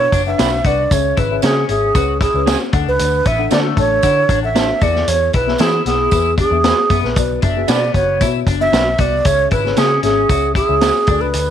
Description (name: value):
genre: uptempo 1960s-style soul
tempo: 115 BPM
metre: 4/4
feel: straight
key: unclear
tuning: A4 = 440 Hz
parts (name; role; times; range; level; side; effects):
- breathy bright wooden-headed alto flute; melody; 0.0-11.5 s; G#4 to E5; -16 LUFS; right 3 dB; none
- dark upright piano; accompaniment; 0.0-11.5 s; B2 to A5; -23 LUFS; left 16 dB; none
- electric guitar at the edge of break-up; riff; 0.0-11.3 s; A3 to F#4; -25 LUFS; left 16 dB; wide subtle chorus
- vintage muted picked electric bass; bass; 0.0-11.5 s; F#1 to E3; -21 LUFS; left 1 dB; none
- vintage drum kit; drums; 0.1-11.5 s; hi-hat, kick drum, snare drum; -18 LUFS; left 1 dB; none
- tambourine; percussion; 0.1-11.5 s; none; -32 LUFS; right 18 dB; none
- electric guitar through a small old amp; stabs; 0.4-10.9 s; B3 to B4; -24 LUFS; right 11 dB; harmonic tremolo
room: light reverb, small room ambience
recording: 1960s-style stereo with parts hard left and right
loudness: -13 LUFS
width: side -9 dB against mid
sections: 0.0-11.5 A section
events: none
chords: 0.0 Bm; 0.9 C#m; 2.7 D; 4.8 E; 7.2 Bm; 9.3 C#m